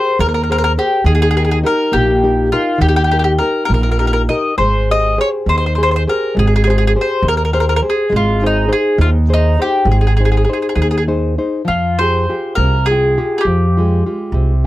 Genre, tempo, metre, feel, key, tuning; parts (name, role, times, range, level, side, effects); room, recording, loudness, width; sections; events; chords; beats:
italian folk, Italian serenade; 68 BPM (dotted quarters); 6/8; rubato; Ab major, F minor from 11.7 s; A4 = 439 Hz
mandolin; melody; 0.0-14.7 s; Eb4 to Eb5; -16 LUFS; left 1 dB
nylon-string guitar; accompaniment; 0.0-14.7 s; C3 to G5; -18 LUFS; left 1 dB
upright bass; bass; 0.2-14.7 s; Ab1 to F2; -15 LUFS; right 1 dB
little or no reverb; dry, close 1970s-style studio recording; -12 LUFS; side -16 dB against mid
0.0-11.7 A section; 11.7-14.7 B section
0.0 Abadd9; 1.1 Eb; 4.6 Abmaj7; 8.1 Ab; 11.7 Fmadd9
0.18 | 1.06 1.93 | 2.80 3.69 | 4.59 5.48 | 6.36 7.23 | 8.11 8.98 | 9.86 10.76 | 11.66 12.56 | 13.44 14.31